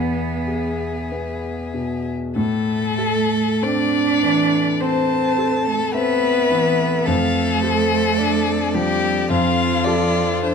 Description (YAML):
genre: classical, slow romantic movement for piano quartet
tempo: 46-54 BPM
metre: 4/4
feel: rubato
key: A minor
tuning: A4 = 439 Hz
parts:
  - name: rich violin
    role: melody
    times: 0.0-10.5 s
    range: F4 to E5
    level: -22 LUFS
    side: left 7 dB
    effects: none
  - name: rich cello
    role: second line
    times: 0.0-10.5 s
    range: F3 to D4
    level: -23 LUFS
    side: right 8 dB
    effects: none
  - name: rich violin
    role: second line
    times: 0.0-10.5 s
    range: G#4 to A5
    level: -26 LUFS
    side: left 2 dB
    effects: none
  - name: warm grand piano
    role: accompaniment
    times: 0.0-10.5 s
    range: E2 to A4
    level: -22 LUFS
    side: left 1 dB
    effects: none
room: moderate recital hall reverb, RT60 1.9 s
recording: close, detailed microphones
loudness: -17 LUFS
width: side -6 dB against mid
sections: 0.0-2.4 A section; 2.4-10.5 B section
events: none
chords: 0.0 E; 2.4 Am; 7.1 Dm/F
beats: 1.10 | 2.35 3.62 4.81 5.94 | 7.07 8.20 9.31 10.43